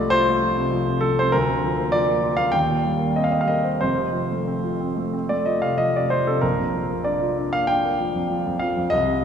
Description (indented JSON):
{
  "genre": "classical, romantic character piece for solo piano",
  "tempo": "95 BPM",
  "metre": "4/4",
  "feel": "uneven beats, rubato",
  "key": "Bb major",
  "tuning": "A4 = 440 Hz",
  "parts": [
    { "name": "warm grand piano", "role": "solo", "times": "0.0-9.2 s", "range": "F1 to G5", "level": "-19 LUFS", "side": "equal", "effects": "none" }
  ],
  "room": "wet church reverb, RT60 3.8 s",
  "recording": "recorded in a church or concert hall",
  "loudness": "-19 LUFS",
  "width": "side -7 dB against mid",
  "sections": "0.0-9.2 A section",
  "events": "none",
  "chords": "0.0 F7/C; 1.3 Bb/D; 2.5 Cm7/Eb; 3.8 F; 6.4 Bb",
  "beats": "0.12 0.72 | 1.33 1.93 2.54 3.16 | 3.81 4.48 5.13 5.78 | 6.43 7.07 7.69 8.30 | 8.92"
}